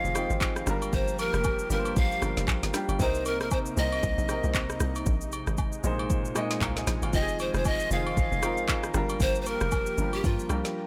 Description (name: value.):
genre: amapiano.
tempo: 116 BPM.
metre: 4/4.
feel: swing 58% on 16ths.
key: unclear.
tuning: A4 = 440 Hz.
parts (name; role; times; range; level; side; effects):
breathy bright pan flute; melody; 0.0-10.8 s; F4 to F5; -33 LUFS; equal; delay.
clear baby grand piano; accompaniment; 0.0-10.9 s; Bb2 to Bb5; -35 LUFS; equal; none.
warm analog pad; sustained chords; 0.0-10.9 s; C3 to G4; -40 LUFS; equal; chorus, sidechain pumping.
tight log drum bass; bass; 0.0-10.6 s; F1 to G2; -34 LUFS; equal; none.
afro-pop drum kit; drums; 0.0-10.7 s; handclaps, kick drum, rim click, shaker, snare drum; -32 LUFS; equal; none.
agogo bells and woodblock; percussion; 0.1-10.6 s; none; -43 LUFS; equal; none.
room: little or no reverb.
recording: none.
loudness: -28 LUFS.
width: mono.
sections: 0.0-10.9 A section.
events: none.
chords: 0.0 Fm7; 0.7 Gm7; 3.0 Cm7; 5.1 Bb9sus4; 7.1 Fm7; 8.9 Gm7.